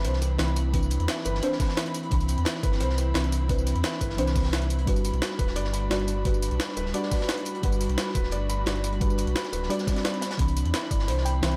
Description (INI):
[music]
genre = liquid drum and bass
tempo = 174 BPM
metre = 4/4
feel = straight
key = G major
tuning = A4 = 440 Hz
[part]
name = deep mellow chord stab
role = accompaniment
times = 0.0-11.6 s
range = E3 to B5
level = -35 LUFS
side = equal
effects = chorus, tape echo
[part]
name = airy breathy pad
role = sustained chords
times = 0.0-11.6 s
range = E3 to B5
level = -37 LUFS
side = equal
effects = chorus, sidechain pumping
[part]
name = felt-muted upright piano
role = arpeggios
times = 0.0-11.6 s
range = E4 to B5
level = -37 LUFS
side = equal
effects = tape echo
[part]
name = sub bass with octave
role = bass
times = 0.0-11.6 s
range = D1 to E2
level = -29 LUFS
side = equal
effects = none
[part]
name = crunchy breakbeat drum kit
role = drums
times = 0.0-11.5 s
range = hi-hat, snare drum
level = -41 LUFS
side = equal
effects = high-pass filter on hats, high-pass filter on snare, high-pass filter on room
[part]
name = jungle sampler-style drum kit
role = drums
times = 0.0-11.6 s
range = hi-hat, snare drum, tambourine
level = -35 LUFS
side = equal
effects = none
[part]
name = electronic kick drum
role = drums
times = 0.7-11.0 s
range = none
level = -29 LUFS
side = equal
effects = none
[part]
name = swell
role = sound effects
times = 9.9-10.4 s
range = none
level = -44 LUFS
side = equal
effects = none
[sound]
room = small room ambience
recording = none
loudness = -26 LUFS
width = mono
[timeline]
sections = 0.0-11.6 A section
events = swell 9.9-10.4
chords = 0.0 Cmaj9; 4.9 Gmaj7; 10.4 Cmaj9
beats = 0.05 0.39 | 0.74 1.08 1.43 1.77 | 2.12 2.46 2.81 3.15 | 3.49 3.84 4.18 4.53 | 4.87 5.22 5.56 5.91 | 6.25 6.60 6.94 7.29 | 7.63 7.98 8.32 8.67 | 9.01 9.36 9.70 10.05 | 10.39 10.74 11.08 11.43